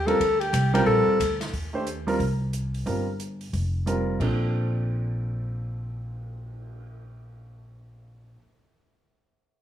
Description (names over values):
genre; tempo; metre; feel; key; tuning
jazz, small-group swing and bop; 180 BPM; 4/4; swing 62% on 8ths; Bb major; A4 = 440 Hz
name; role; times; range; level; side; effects
breathy alto saxophone; melody; 0.0-1.4 s; G4 to A4; -22 LUFS; left 2 dB; none
upright bass; bass; 0.0-8.3 s; F1 to Eb2; -28 LUFS; equal; none
warm grand piano; accompaniment; 0.1-8.4 s; Bb2 to C5; -27 LUFS; right 3 dB; none
open jazz drum kit; drums; 0.1-6.8 s; crash cymbal, cymbal swell, hi-hat, kick drum, ride cymbal, snare drum; -36 LUFS; left 1 dB; none
room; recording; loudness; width
light reverb; small room ambience; -23 LUFS; side -10 dB against mid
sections
0.0-1.5 A section; 1.5-4.2 B section; 4.2-6.9 C section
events
none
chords
0.0 Bb6; 1.5 Ebmaj7; 2.2 N.C.; 2.9 G7sus4; 3.5 Fsus4; 4.2 Bbmaj9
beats
| 0.19 0.53 0.86 1.19 | 1.52 1.86 2.19 2.53 | 2.86 3.19 3.53 3.86 | 4.20 4.53 4.86 5.20 | 5.53 5.87 6.20 6.53